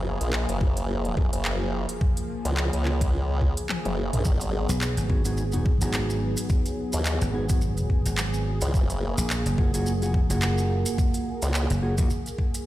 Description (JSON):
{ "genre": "glitch hop", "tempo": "107 BPM", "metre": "4/4", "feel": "swing 57% on 16ths", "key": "unclear", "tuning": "A4 = 440 Hz", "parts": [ { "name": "warm analog pad", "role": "sustained chords", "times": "0.0-12.7 s", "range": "E#3 to G#4", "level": "-32 LUFS", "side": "equal", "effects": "chorus, sidechain pumping" }, { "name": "formant-sweep wobble bass", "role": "bass", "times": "0.0-11.7 s", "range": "F#1 to D#2", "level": "-26 LUFS", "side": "equal", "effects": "chorus" }, { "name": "pop drum kit", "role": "drums", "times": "0.2-12.6 s", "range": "handclaps, hi-hat, toms", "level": "-32 LUFS", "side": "equal", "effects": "none" }, { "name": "electronic kick drum", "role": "drums", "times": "0.6-12.5 s", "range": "none", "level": "-23 LUFS", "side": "equal", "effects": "none" }, { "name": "maracas", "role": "percussion", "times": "4.2-12.6 s", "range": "none", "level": "-38 LUFS", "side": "right 2 dB", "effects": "none" }, { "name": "dry thumbed slap bass", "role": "bass", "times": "4.7-12.1 s", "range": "F#1 to B1", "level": "-26 LUFS", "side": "equal", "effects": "tube saturation" }, { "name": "mellow electric guitar", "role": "stabs", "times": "5.1-12.1 s", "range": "A#3 to G#4", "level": "-32 LUFS", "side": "right 1 dB", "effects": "sidechain pumping, ping-pong delay" } ], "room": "digital ambience", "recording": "played on a big sound system in a bare room, stone room reverb", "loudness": "-23 LUFS", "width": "side -15 dB against mid", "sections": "0.0-12.7 A section", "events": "drum fill 3.7-4.3", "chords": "0.0 F#maj9; 4.3 G#m7; 8.7 F#maj9", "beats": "0.33 0.89 1.45 | 2.01 2.57 3.13 3.69 | 4.25 4.82 5.38 5.94 | 6.50 7.06 7.62 8.18 | 8.74 9.30 9.86 10.42 | 10.98 11.54 12.11" }